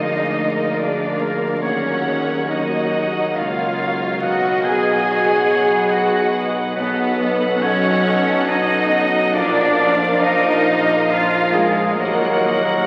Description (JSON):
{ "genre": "classical, slow romantic movement for symphony orchestra", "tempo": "69 BPM", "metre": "3/4", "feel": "rubato", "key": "Eb minor", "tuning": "A4 = 440 Hz", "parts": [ { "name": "rich studio violin section", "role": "melody", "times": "0.0-12.9 s", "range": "D#5 to Gb5", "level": "-30 LUFS", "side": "equal", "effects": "none" }, { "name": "bright clarinet", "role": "second line", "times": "0.0-12.9 s", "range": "Ab4 to Ab5", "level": "-24 LUFS", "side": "equal", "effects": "none" }, { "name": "mellow hollow concert flute", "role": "second line", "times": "0.0-12.9 s", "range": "Bb4 to F5", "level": "-30 LUFS", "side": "equal", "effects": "none" }, { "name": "rich studio violin section", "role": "second line", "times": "0.0-12.8 s", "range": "Ab4 to Ab5", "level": "-30 LUFS", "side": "equal", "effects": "none" }, { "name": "mellow bassoon", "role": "accompaniment", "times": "0.0-12.9 s", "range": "F3 to Ab3", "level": "-30 LUFS", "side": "equal", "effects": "none" }, { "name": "rich studio viola section", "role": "accompaniment", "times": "0.0-12.9 s", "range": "Gb4 to F#5", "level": "-31 LUFS", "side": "equal", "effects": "none" }, { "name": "clear trombone section", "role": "sustained chords", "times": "0.0-12.9 s", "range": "F3 to B3", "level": "-31 LUFS", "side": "equal", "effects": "none" }, { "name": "warm French horn section", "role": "sustained chords", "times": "0.0-12.9 s", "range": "Gb4 to F5", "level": "-31 LUFS", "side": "equal", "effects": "none" }, { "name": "concert harp", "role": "arpeggios", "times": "0.0-12.9 s", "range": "Bb2 to B5", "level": "-34 LUFS", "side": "equal", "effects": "none" }, { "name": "clear studio double bass section", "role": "bass", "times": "0.0-12.9 s", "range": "Bb1 to Eb2", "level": "-34 LUFS", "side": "equal", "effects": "none" }, { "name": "mellow tuba", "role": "bass", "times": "0.0-12.9 s", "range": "Bb1 to Eb2", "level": "-32 LUFS", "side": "equal", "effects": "none" }, { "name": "rich studio cello section", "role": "bass", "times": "0.0-12.9 s", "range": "Ab3 to Ab4", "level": "-23 LUFS", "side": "equal", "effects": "none" } ], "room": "wet cathedral reverb, RT60 5.1 s", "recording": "very old 78 rpm record, vinyl crackle", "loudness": "-18 LUFS", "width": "mono", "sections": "0.0-12.9 A section", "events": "none", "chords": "0.0 Bb7/D; 1.6 Ebm; 4.2 B; 6.8 B7; 9.4 Bb; 12.0 Ebm" }